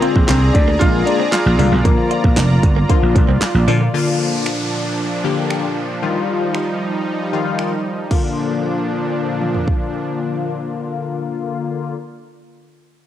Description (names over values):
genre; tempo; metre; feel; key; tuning
dance-pop; 115 BPM; 4/4; straight; Bb major; A4 = 441 Hz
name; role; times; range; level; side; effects
clear baby grand piano; melody; 0.0-3.6 s; Bb3 to F4; -20 LUFS; left 2 dB; cassette tape, analog delay
funky polysynth comp; accompaniment; 0.0-11.9 s; D3 to G4; -22 LUFS; left 6 dB; chorus, sidechain pumping, cassette tape
soft supersaw; sustained chords; 0.0-11.9 s; Bb2 to Bb5; -23 LUFS; right 2 dB; sidechain pumping, cassette tape
direct-recorded clean electric guitar; riff; 0.0-3.9 s; Bb3 to F4; -27 LUFS; right 11 dB; lush chorus, cassette tape
pop drum kit; drums; 0.0-9.8 s; crash cymbal, finger snaps, handclaps, hi-hat, kick drum, snare drum, toms; -17 LUFS; right 1 dB; cassette tape
vintage slap bass; bass; 0.2-3.9 s; F1 to Bb2; -15 LUFS; right 1 dB; sidechain pumping
downlifter; sound effects; 3.9-8.1 s; none; -28 LUFS; equal; none
room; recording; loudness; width
moderate lush hall reverb, RT60 2.0 s; home recording on cassette; -15 LUFS; side -11 dB against mid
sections
0.0-3.9 A section; 3.9-8.1 B section; 8.1-12.3 C section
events
none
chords
0.0 Bb7; 1.9 Bb; 6.0 Ebadd9; 8.1 Bb